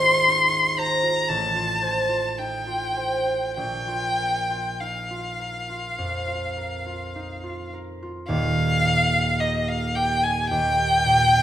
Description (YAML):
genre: classical, romantic duo for violin and harp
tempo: 48-61 BPM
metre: 4/4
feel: rubato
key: Eb major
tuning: A4 = 444 Hz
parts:
  - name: rich violin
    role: melody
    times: 0.0-11.4 s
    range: Eb5 to C6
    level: -22 LUFS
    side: left 1 dB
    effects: none
  - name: concert harp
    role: accompaniment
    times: 0.0-11.4 s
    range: Eb1 to Eb5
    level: -26 LUFS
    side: right 2 dB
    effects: none
room: wet recital hall reverb, RT60 1.5 s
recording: minimal, uncompressed stereo recording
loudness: -21 LUFS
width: side -11 dB against mid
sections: 0.0-8.3 A section; 8.3-11.4 B section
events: none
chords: 0.0 Fm7/Ab; 1.3 F7/A; 3.6 Bb5; 8.3 Eb